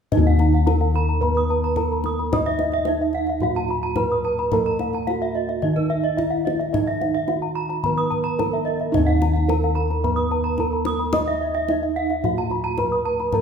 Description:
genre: Balinese gamelan.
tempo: 109 BPM.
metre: 4/4.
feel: straight.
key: Eb pelog.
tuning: A4 = 440 Hz.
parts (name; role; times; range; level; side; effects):
gamelan-type bronze metallophone; melody; 0.1-13.4 s; Eb4 to Eb5; -25 LUFS; right 4 dB; none.
gamelan-type bronze metallophone; accompaniment; 0.1-13.4 s; Eb3 to Eb4; -32 LUFS; right 3 dB; none.
gamelan-type bronze metallophone; arpeggios; 0.1-13.4 s; Eb5 to Eb6; -27 LUFS; left 4 dB; none.
gamelan-type bossed gongs; bass; 0.1-13.4 s; Eb2 to Eb5; -23 LUFS; left 1 dB; none.
kendang; percussion; 0.1-13.4 s; none; -29 LUFS; left 2 dB; none.
gamelan-type bronze metallophone; arpeggios; 0.3-13.2 s; Cb5-40c to Eb6; -28 LUFS; right 4 dB; none.
room: wet recital hall reverb, RT60 1.6 s.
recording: minimal, uncompressed stereo recording.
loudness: -19 LUFS.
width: side -7 dB against mid.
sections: 0.1-13.4 A section.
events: none.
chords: none.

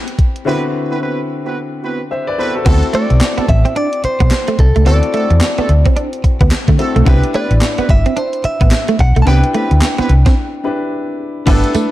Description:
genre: R&B, new jack swing.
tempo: 109 BPM.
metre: 4/4.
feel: swing 61% on 16ths.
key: unclear.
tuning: A4 = 440 Hz.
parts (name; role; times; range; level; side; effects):
clear grand piano; accompaniment; 0.0-11.9 s; D3 to E5; -21 LUFS; left 3 dB; none.
gated 80s digital drum machine; drums; 0.1-11.9 s; crash cymbal, handclaps, hi-hat, kick drum, snare drum, tambourine; -14 LUFS; equal; gated reverb, gated reverb snare.
clear horn section; stabs; 0.5-11.7 s; A3 to B4; -24 LUFS; right 3 dB; none.
direct-recorded clean electric guitar; riff; 2.7-11.9 s; A3 to D4; -20 LUFS; right 4 dB; analog chorus.
hollow-body short-scale fingered electric bass; bass; 2.7-11.8 s; G1 to D3; -12 LUFS; equal; none.
direct-recorded clean electric guitar; melody; 2.9-10.9 s; A4 to A5; -20 LUFS; equal; none.
room: little or no reverb.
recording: dark, warm production.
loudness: -11 LUFS.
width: side -15 dB against mid.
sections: 0.0-2.7 A section; 2.7-11.5 B section.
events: break 0.5-2.7, 10.4-11.5.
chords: 0.5 D13; 2.7 D7; 7.1 Cmaj7.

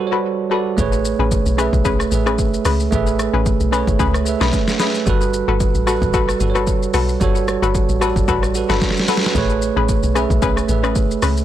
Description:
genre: amapiano.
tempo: 112 BPM.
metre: 4/4.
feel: swing 55% on 16ths.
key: A major.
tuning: A4 = 438 Hz.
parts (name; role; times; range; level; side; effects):
bell-like tine electric piano; accompaniment; 0.0-11.4 s; G3 to E5; -20 LUFS; right 8 dB; none.
hollow square pluck; stabs; 0.1-11.4 s; C#4 to B4; -23 LUFS; left 7 dB; chorus, ping-pong delay.
deep log drum bass; bass; 0.8-11.4 s; F#1 to C#2; -20 LUFS; left 1 dB; none.
deep house drum kit; drums; 0.8-11.4 s; hi-hat, kick drum, rim click, shaker, snare drum; -20 LUFS; left 1 dB; soft clipping on snare.
room: little or no reverb.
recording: blown-out, overdriven recording, overdrive.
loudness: -15 LUFS.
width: side -11 dB against mid.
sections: 0.8-11.4 A section.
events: break 0.0-0.8; drop 0.8-11.4; drum fill 8.8-9.4.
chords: 0.0 Gmaj9; 0.8 Amaj9; 5.1 Gmaj9; 9.4 Amaj9.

